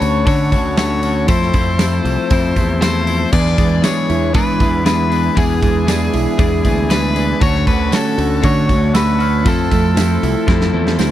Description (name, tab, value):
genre	indie rock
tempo	118 BPM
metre	4/4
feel	straight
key	unclear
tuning	A4 = 441 Hz
part	overdriven electric guitar	melody	0.0-11.0 s	G#4 to D5	-20 LUFS	left 3 dB	phaser, tape echo
part	glockenspiel with rubber mallets	second line	0.0-0.7, 8.9-9.8 s	A5 to F6	-29 LUFS	right 8 dB	none
part	combo organ	sustained chords	0.0-11.1 s	C#4 to E6	-30 LUFS	right 1 dB	none
part	twelve-string electric guitar	riff	0.0-11.1 s	D3 to G#4	-20 LUFS	left 7 dB	none
part	modern bright picked electric bass	bass	0.0-11.1 s	B1 to E3	-18 LUFS	equal	none
part	big rock drum kit	drums	0.0-11.1 s	crash cymbal, hi-hat, kick drum, snare drum	-18 LUFS	right 1 dB	none
part	tambourine	percussion	0.8-11.1 s	none	-32 LUFS	right 17 dB	none
part	mellow electric guitar	riff	3.3-11.1 s	E2 to F#4	-20 LUFS	right 8 dB	lush chorus
room	little or no reverb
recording	dry, close 1970s-style studio recording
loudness	-13 LUFS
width	side -12 dB against mid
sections	0.0-11.1 A section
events	drum fill 10.5-11.1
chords	0.0 Dmaj7; 1.3 Fmaj7; 3.3 E7; 7.4 Dmaj7; 9.5 Fmaj7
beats	0.27 0.78 | 1.29 1.80 2.31 2.82 | 3.33 3.84 4.35 4.86 | 5.37 5.88 6.39 6.91 | 7.42 7.93 8.44 8.95 | 9.46 9.97 10.48 10.99